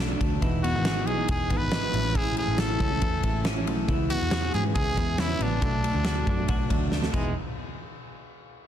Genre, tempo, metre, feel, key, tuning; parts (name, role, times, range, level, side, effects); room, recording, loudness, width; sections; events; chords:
jangly indie pop; 138 BPM; 4/4; straight; A4 = 439 Hz
fingerpicked plugged-in steel-string acoustic guitar; accompaniment; 0.0-7.3 s; A2 to E4; -34 LUFS; right 8 dB
twelve-string electric guitar; arpeggios; 0.0-7.3 s; E3 to G#4; -32 LUFS; left 3 dB; spring reverb, ping-pong delay
vintage muted picked electric bass; bass; 0.0-7.3 s; E1 to G#2; -29 LUFS; equal
big rock drum kit; drums; 0.2-7.2 s; crash cymbal, kick drum, ride cymbal, snare drum; -28 LUFS; equal
growling trumpet; melody; 0.6-7.3 s; G#3 to B4; -31 LUFS; equal; ping-pong delay
light reverb; dense, heavily limited modern master; -23 LUFS; side -10 dB against mid
0.0-7.4 A section; 7.4-8.7 B section
drum fill 6.9-7.4
0.4 Emaj7; 1.9 Amaj7; 5.6 Bm7; 7.1 Emaj7; 7.4 N.C.